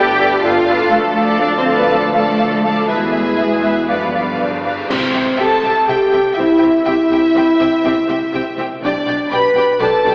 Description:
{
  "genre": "cinematic, heroic adventure film score",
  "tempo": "122 BPM",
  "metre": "4/4",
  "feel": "straight",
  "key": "unclear",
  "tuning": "A4 = 440 Hz",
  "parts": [
    { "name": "rich symphonic violin section", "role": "melody", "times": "0.0-10.1 s", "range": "G#4 to B5", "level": "-20 LUFS", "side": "equal", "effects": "none" },
    { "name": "mellow clarinet", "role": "second line", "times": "0.0-4.8 s", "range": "A4 to D5", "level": "-26 LUFS", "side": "equal", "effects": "none" },
    { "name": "warm symphonic violin section", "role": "second line", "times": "0.0-10.1 s", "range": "D5 to A5", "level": "-23 LUFS", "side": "equal", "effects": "none" },
    { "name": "warm symphonic viola section", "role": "accompaniment", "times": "0.0-10.1 s", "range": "C4 to D5", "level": "-23 LUFS", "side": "equal", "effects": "none" },
    { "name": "mellow French horn section", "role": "sustained chords", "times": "0.0-10.1 s", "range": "G3 to B4", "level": "-16 LUFS", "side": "equal", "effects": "none" },
    { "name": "warm trombone section", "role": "sustained chords", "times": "0.0-4.6 s", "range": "B2 to A3", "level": "-24 LUFS", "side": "equal", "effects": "none" },
    { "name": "dark symphonic cello section", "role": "bass", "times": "0.0-10.1 s", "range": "B2 to G4", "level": "-20 LUFS", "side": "equal", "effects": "none" },
    { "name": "warm symphonic double bass section", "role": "bass", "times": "0.0-10.1 s", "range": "G1 to G2", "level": "-28 LUFS", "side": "equal", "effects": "none" },
    { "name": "mellow silver concert flute", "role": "second line", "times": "0.2-4.7 s", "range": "D5 to F5", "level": "-22 LUFS", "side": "equal", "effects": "none" },
    { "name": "cymbal swell, clash cymbals and concert bass drum", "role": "percussion", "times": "0.9-5.8 s", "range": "none", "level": "-25 LUFS", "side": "equal", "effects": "none" }
  ],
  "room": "wet concert hall reverb, RT60 1.8 s",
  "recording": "heard from further back in the room, AM radio sound",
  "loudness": "-12 LUFS",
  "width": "side -33 dB against mid",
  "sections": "0.0-4.9 A section; 4.9-10.1 B section",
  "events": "band accent 4.9-5.4",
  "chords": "0.0 Gadd9; 0.9 Dm; 2.9 E; 3.9 G7; 4.9 C; 8.8 G/B",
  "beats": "0.43 | 0.92 1.41 1.90 2.39 | 2.89 3.38 3.88 4.39 | 4.89 5.38 5.87 6.36 | 6.85 7.34 7.83 8.32 | 8.81 9.30 9.80"
}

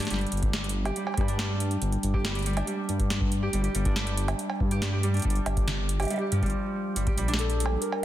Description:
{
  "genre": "IDM",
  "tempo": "140 BPM",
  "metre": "4/4",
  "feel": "straight",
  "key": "G minor",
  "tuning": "A4 = 440 Hz",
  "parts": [
    { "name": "Celtic harp", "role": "arpeggios", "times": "0.0-8.0 s", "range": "D3 to G4", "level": "-31 LUFS", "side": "right 1 dB", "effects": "vintage 12-bit sampler grit, tape echo" },
    { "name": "dark detuned saw bass", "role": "bass", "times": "0.0-7.8 s", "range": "G1 to G2", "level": "-28 LUFS", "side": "equal", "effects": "none" },
    { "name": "booming analog drum machine", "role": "drums", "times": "0.0-8.0 s", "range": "bongos, cowbell, hi-hat, snare drum", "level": "-32 LUFS", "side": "right 2 dB", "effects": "none" },
    { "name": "electronic kick drum", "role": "drums", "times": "0.4-7.2 s", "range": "none", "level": "-29 LUFS", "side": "equal", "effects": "none" },
    { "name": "warbly nostalgic lead", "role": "melody", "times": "7.4-8.0 s", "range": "A4 to Bb4", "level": "-31 LUFS", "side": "left 2 dB", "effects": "chorus, tremolo, tape echo" }
  ],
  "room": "light reverb, digital ambience",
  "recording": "dense, heavily limited modern master",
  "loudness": "-25 LUFS",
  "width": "side -13 dB against mid",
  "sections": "0.0-7.0 A section; 7.0-8.0 B section",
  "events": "stop 6.5-7.0",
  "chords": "0.1 G5; 7.0 Gm",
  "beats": "| 0.10 0.53 0.96 1.39 | 1.82 2.25 2.67 3.10 | 3.53 3.96 4.39 4.82 | 5.25 5.67 6.10 6.53 | 6.96 7.39 7.82"
}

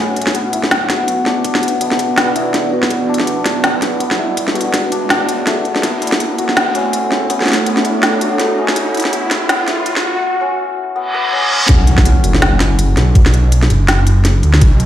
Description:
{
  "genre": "half-time drum and bass",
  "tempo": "164 BPM",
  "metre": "4/4",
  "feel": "swing 58% on 16ths, half-time",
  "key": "B minor",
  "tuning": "A4 = 440 Hz",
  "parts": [
    { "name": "deep dark ambient pad", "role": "sustained chords", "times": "0.0-10.2 s", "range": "A3 to F#5", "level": "-21 LUFS", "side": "right 2 dB", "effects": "chorus, built-in reverb, sidechain pumping" },
    { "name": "santur", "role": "arpeggios", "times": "0.0-14.9 s", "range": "A3 to B4", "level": "-19 LUFS", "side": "left 3 dB", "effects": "tape echo" },
    { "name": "phased detuned saw bass", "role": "bass", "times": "0.0-14.9 s", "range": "F#1 to D2", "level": "-17 LUFS", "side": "equal", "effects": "phaser, high-pass filter" },
    { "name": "riser, reverse cymbal and impact", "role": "sound effects", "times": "1.4-13.2 s", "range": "none", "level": "-21 LUFS", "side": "right 1 dB", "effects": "none" },
    { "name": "organic electronic drum kit", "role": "drums", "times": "0.2-14.9 s", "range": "hi-hat, snare drum", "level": "-16 LUFS", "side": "equal", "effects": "none" },
    { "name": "electronic kick drum", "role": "drums", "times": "0.3-9.1, 11.7-14.7 s", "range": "none", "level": "-12 LUFS", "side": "equal", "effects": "high-pass filter on kick, high-pass filter on room" }
  ],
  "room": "light reverb, digital ambience",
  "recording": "played on a big sound system in a bare room, stone room reverb, high-pass filter",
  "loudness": "-12 LUFS",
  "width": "side -11 dB against mid",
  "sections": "0.0-11.7 A section; 11.7-14.9 B section",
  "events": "build-up 0.0-11.7; filter sweep 0.0-11.7; riser 1.4-10.2; reverse cymbal 11.1-11.7; drop 11.7-14.9; impact 11.7-13.2",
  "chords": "0.0 Bm; 5.8 A; 11.7 B5",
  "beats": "0.35 0.71 1.08 | 1.45 1.81 2.18 2.54 | 2.91 3.27 3.64 4.01 | 4.37 4.74 5.10 5.47 | 5.84 6.20 6.57 6.93 | 7.30 7.67 8.03 8.40 | 8.76 9.13 9.49 9.86 | 10.23 10.59 10.96 11.32 | 11.69 12.05 12.42 12.79 | 13.15 13.52 13.88 14.25 | 14.62"
}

